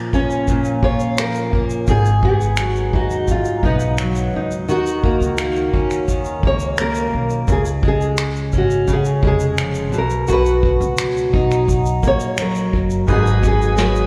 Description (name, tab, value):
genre	acoustic pop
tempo	86 BPM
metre	4/4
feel	straight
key	unclear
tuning	A4 = 440 Hz
part	fingerpicked plugged-in steel-string acoustic guitar	accompaniment	0.0-14.1 s	G#2 to G#4	-22 LUFS	equal	double-tracked
part	nylon-string guitar	melody	0.1-14.1 s	C#4 to C#5	-24 LUFS	equal	slapback echo
part	vintage brush drum kit	drums	0.1-14.1 s	finger snaps, kick drum, shaker, snare drum	-24 LUFS	equal	none
part	upright bass	bass	1.9-14.1 s	E#1 to D#2	-24 LUFS	equal	none
part	clear upright piano	accompaniment	13.1-14.1 s	G#3 to B4	-29 LUFS	equal	slapback echo
part	bright tonewheel organ	sustained chords	13.1-14.1 s	G#4 to B5	-29 LUFS	equal	lush chorus
room	moderate lush hall reverb, RT60 2.0 s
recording	live gig heard through the venue's PA, club reverb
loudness	-18 LUFS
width	mono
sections	0.0-1.9 A section; 1.9-14.1 B section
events	none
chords	0.0 A#m; 1.9 G#m7; 4.7 D#m7; 7.5 C#; 9.9 Bmaj7; 13.1 G#m7